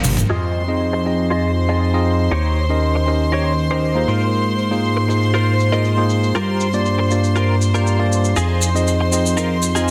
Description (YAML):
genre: nu-disco, nu disco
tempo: 119 BPM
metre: 4/4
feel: straight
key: F dorian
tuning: A4 = 440 Hz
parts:
  - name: tine electric piano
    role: accompaniment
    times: 0.0-9.9 s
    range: F3 to Eb5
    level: -23 LUFS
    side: equal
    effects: analog delay
  - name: direct-recorded clean electric guitar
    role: riff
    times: 0.0-9.9 s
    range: Eb4 to Eb5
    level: -27 LUFS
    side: equal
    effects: ensemble chorus, vintage 12-bit sampler grit, low-pass filter, analog delay
  - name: fat analog bass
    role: bass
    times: 0.0-9.9 s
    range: G1 to Ab2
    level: -21 LUFS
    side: equal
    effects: none
  - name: tight funk drum kit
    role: drums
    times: 0.0-9.9 s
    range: cabasa, crash cymbal, hi-hat, toms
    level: -27 LUFS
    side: equal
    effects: low-pass filter on hats, studio reverb, low-pass filter on toms, low-pass filter on cymbals, low-pass filter on snare, low-pass filter on perc, low-pass filter on room
  - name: maracas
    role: percussion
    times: 0.0-0.3, 8.4-9.9 s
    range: none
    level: -31 LUFS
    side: equal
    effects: none
  - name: rich chamber string section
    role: sustained chords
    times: 0.3-9.9 s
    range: C5 to C6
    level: -27 LUFS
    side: equal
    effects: none
room: moderate plate reverb, RT60 1.5 s, small room ambience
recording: dense, heavily limited modern master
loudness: -18 LUFS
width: mono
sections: 0.3-9.9 A section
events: drum fill 0.0-0.3; filter sweep on drum 0.3-9.9; filter sweep on clean electric guitar 0.3-9.9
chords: 0.3 Fm7; 2.3 Eb7; 4.1 Ab69; 6.3 Gm7; 8.4 Fm7